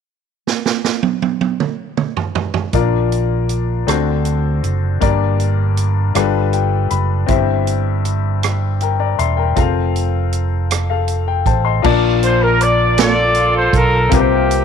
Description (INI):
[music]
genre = slow gospel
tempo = 53 BPM (dotted quarters)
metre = 6/8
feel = straight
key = Bb major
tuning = A4 = 441 Hz
[part]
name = swinging big-band drum kit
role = drums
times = 0.5-14.6 s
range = crash cymbal, hi-hat, kick drum, rim click, snare drum, toms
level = -19 LUFS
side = right 6 dB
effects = none
[part]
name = clear baby grand piano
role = accompaniment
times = 2.7-14.6 s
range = G2 to C6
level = -18 LUFS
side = left 15 dB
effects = none
[part]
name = fingered electric bass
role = bass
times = 2.7-14.6 s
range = E1 to D2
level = -17 LUFS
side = right 2 dB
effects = none
[part]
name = mellow horn section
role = melody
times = 12.2-14.6 s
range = Bb3 to D5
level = -14 LUFS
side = equal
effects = none
[sound]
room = studio reverb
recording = 1960s-style stereo with parts hard left and right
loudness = -14 LUFS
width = side -7 dB against mid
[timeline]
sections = 0.5-2.7 A section; 2.7-11.8 B section; 11.8-14.6 C section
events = drum fill 0.5-2.7; grand piano fill 6.2-7.3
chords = 0.5 N.C.; 2.7 Bb; 3.9 D7; 5.0 Gm; 6.2 G9; 7.3 C/G; 9.6 F; 11.8 Bbmaj7; 14.1 C7sus4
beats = | 0.46 1.60 | 2.74 3.88 | 5.02 6.16 | 7.30 8.44 | 9.57 10.71 | 11.85 12.98 | 14.12